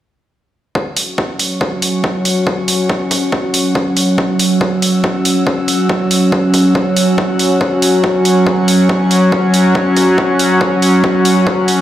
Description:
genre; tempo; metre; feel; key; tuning
driving peak-time techno; 140 BPM; 4/4; straight; unclear; A4 = 439 Hz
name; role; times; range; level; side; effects
analog drone; drone; 1.4-11.8 s; F#3 to C#4; -13 LUFS; equal; chorus, sidechain pumping
electronic kick drum; drums; 0.8-11.6 s; none; -18 LUFS; equal; high-pass filter on kick, high-pass filter on room
airy breathy pad; texture; 1.0-11.8 s; C#4 to F#6; -20 LUFS; left 1 dB; chorus, sidechain pumping
electronic hi-hat; drums; 1.0-11.8 s; none; -17 LUFS; right 2 dB; none
room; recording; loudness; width
light reverb; played on a big sound system in a bare room, stone room reverb; -11 LUFS; side -12 dB against mid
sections
0.8-11.8 A section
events
fade-in on analog synth pad 0.8-11.8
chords
0.8 F#5

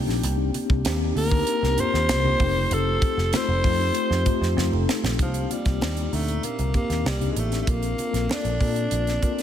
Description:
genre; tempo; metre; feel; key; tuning
polished 1980s jazz-funk pop; 97 BPM; 4/4; straight; C dorian; A4 = 442 Hz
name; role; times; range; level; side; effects
mellow tine electric piano; accompaniment; 0.0-9.4 s; Bb2 to Bb5; -27 LUFS; left 4 dB; medium stereo tremolo, wide subtle chorus, slapback echo
vintage muted picked electric bass; bass; 0.0-9.2 s; F1 to Bb2; -25 LUFS; equal; none
tight funk drum kit; drums; 0.1-9.4 s; hi-hat, kick drum, snare drum; -27 LUFS; right 1 dB; none
congas; percussion; 0.1-9.4 s; none; -36 LUFS; right 2 dB; none
raspy alto saxophone; melody; 1.2-9.4 s; F3 to C5; -27 LUFS; equal; none
room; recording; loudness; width
moderate lush hall reverb, RT60 3.1 s; big arena sound; -21 LUFS; side -10 dB against mid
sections
0.0-5.2 A section; 5.2-9.4 B section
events
drum fill 4.6-5.2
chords
0.0 Cm7; 2.4 F7; 5.2 Cm7; 7.7 Bbmaj7

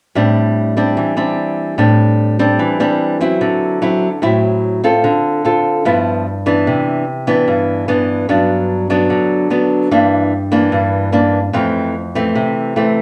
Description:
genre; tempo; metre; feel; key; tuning
bossa nova; 148 BPM; 4/4; straight; G major; A4 = 440 Hz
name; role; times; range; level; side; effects
nylon-string guitar; solo; 0.2-13.0 s; F2 to A4; -15 LUFS; equal; none
room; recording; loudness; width
wet large studio reverb, RT60 0.9 s; heard from further back in the room; -15 LUFS; mono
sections
0.2-6.7 A section; 6.7-13.0 B section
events
none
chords
0.2 Am7; 3.4 D9; 5.0 Dm7; 5.9 G6; 6.7 Cmaj9; 8.3 Gmaj7; 9.9 Gm6; 11.5 Fmaj7

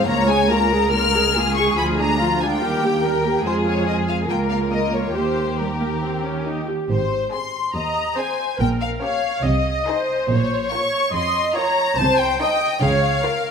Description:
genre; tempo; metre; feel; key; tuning
quick classical-period movement for string orchestra; 142 BPM; 4/4; straight; Ab major; A4 = 440 Hz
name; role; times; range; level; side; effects
rich studio violin section; melody; 0.0-13.5 s; Bb4 to F6; -22 LUFS; left 5 dB; none
rich studio violin section; second line; 0.0-13.5 s; C4 to Db5; -26 LUFS; left 3 dB; none
rich studio viola section; accompaniment; 0.0-13.5 s; F3 to Eb5; -23 LUFS; right 2 dB; none
dark studio cello section; bass; 0.0-13.2 s; Db2 to Db3; -24 LUFS; right 2 dB; none
rich studio double bass section; bass; 6.9-13.2 s; Ab1 to Db2; -25 LUFS; right 2 dB; none
room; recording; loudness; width
moderate recital hall reverb, RT60 1.9 s; none; -18 LUFS; side -6 dB against mid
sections
0.0-6.9 A section; 6.9-13.5 B section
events
none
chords
0.1 Bbm7/Db; 1.8 Ddim; 2.6 Eb; 3.4 Fm; 4.3 Bbm/Db; 5.2 Eb; 6.9 Ab; 8.6 Gdim/Bb; 9.5 Ab/C; 10.3 Bbm; 12.0 Adim/C; 12.8 Bbm/Db

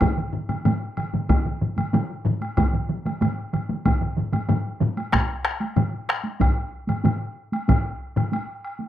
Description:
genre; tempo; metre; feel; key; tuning
japanese traditional, taiko drum ensemble; 94 BPM; 4/4; straight; none; none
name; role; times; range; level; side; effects
taiko ensemble; percussion; 0.0-8.9 s; none; -27 LUFS; right 2 dB; none
taiko ensemble; percussion; 0.0-8.3 s; none; -26 LUFS; left 3 dB; none
taiko ensemble; percussion; 0.0-8.3 s; none; -27 LUFS; right 5 dB; none
taiko ensemble; percussion; 0.0-7.8 s; none; -22 LUFS; equal; none
woodblock; percussion; 0.0-8.8 s; none; -33 LUFS; right 1 dB; none
room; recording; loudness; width
moderate studio reverb, RT60 0.5 s; rough home demo mix; -22 LUFS; side -12 dB against mid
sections
0.0-8.9 A section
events
none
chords
none

